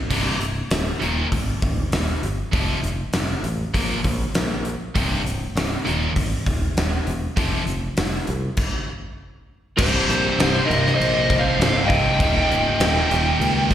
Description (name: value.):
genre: hard rock.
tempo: 99 BPM.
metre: 4/4.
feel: straight.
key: C minor.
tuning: A4 = 440 Hz.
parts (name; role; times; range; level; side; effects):
high-gain distorted guitar; riff; 0.1-13.7 s; C2 to Bb3; -26 LUFS; left 11 dB; distortion, slapback echo.
scooped high-gain guitar; riff; 0.1-13.7 s; C2 to Bb3; -25 LUFS; right 9 dB; distortion, slapback echo.
modern bright fingered electric bass; bass; 0.1-13.7 s; C1 to Db2; -24 LUFS; equal; none.
gated 80s drum kit; drums; 0.1-13.7 s; crash cymbal, hi-hat, kick drum, snare drum; -23 LUFS; equal; none.
dark smooth lead guitar; melody; 9.8-13.7 s; C5 to G5; -22 LUFS; equal; overdrive, slapback echo.
lightly driven lead guitar; second line; 9.8-13.7 s; G4 to Eb5; -27 LUFS; right 1 dB; slapback echo, tape echo.
overdriven tonewheel organ; sustained chords; 9.8-13.7 s; C4 to C5; -34 LUFS; equal; none.
room: light reverb.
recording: live gig heard through the venue's PA, recital hall reverb.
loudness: -19 LUFS.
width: side -10 dB against mid.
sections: 0.0-9.8 A section; 9.8-13.7 B section.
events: stop 8.6-9.8.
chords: 0.1 C5; 1.0 Eb; 2.5 F5; 3.7 Bb5; 4.9 C5; 5.9 Eb5; 7.4 F5; 8.6 N.C.; 9.8 C5; 12.2 Eb.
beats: | 0.10 0.71 1.31 1.92 | 2.52 3.13 3.73 4.34 | 4.94 5.55 6.16 6.76 | 7.37 7.97 8.57 9.18 | 9.78 10.39 10.99 11.59 | 12.20 12.80 13.40.